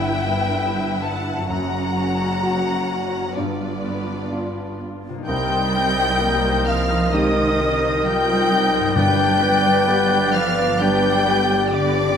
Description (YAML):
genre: cinematic, emotional film score for orchestra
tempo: 65 BPM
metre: 4/4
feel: rubato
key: C minor from 5.3 s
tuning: A4 = 439 Hz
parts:
  - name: warm symphonic violin section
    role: melody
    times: 0.0-12.2 s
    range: D5 to G6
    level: -26 LUFS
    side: left 2 dB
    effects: none
  - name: warm symphonic violin section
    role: second line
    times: 0.0-12.2 s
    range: B4 to G5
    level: -26 LUFS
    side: left 4 dB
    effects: none
  - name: warm grand piano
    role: accompaniment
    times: 0.0-12.2 s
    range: C2 to B4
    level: -28 LUFS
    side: equal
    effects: none
  - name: warm symphonic viola section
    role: accompaniment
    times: 0.0-12.2 s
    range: B3 to D5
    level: -29 LUFS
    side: right 3 dB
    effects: none
  - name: concert harp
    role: arpeggios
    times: 0.0-12.2 s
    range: F#2 to F#5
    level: -32 LUFS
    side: left 8 dB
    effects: none
  - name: clear symphonic double bass section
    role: bass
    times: 0.0-12.2 s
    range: F#1 to C2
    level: -28 LUFS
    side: right 3 dB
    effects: none
  - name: dark symphonic cello section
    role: bass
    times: 0.0-12.2 s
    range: F#2 to G3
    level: -26 LUFS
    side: right 3 dB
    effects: none
  - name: mellow clarinet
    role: second line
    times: 5.3-12.2 s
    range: Bb4 to B4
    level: -26 LUFS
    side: left 1 dB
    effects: none
  - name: mellow hollow concert flute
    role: second line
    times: 5.3-12.2 s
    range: D5 to G5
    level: -25 LUFS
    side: left 3 dB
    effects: none
  - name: warm oboe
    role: second line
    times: 5.3-12.2 s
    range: D5 to Eb5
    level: -27 LUFS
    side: right 3 dB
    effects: none
  - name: mellow French horn section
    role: sustained chords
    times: 7.1-12.2 s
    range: Ab3 to B4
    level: -24 LUFS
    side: left 4 dB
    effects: none
  - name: timpani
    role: percussion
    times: 9.0-10.3 s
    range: G2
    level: -27 LUFS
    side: equal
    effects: none
room: moderate scoring stage reverb, RT60 1.5 s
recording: none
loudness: -17 LUFS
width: side -7 dB against mid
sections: 0.0-5.3 A section; 5.3-12.2 B section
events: none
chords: 0.0 Em/G; 1.5 F#; 3.4 G7; 5.3 Cm7; 9.0 G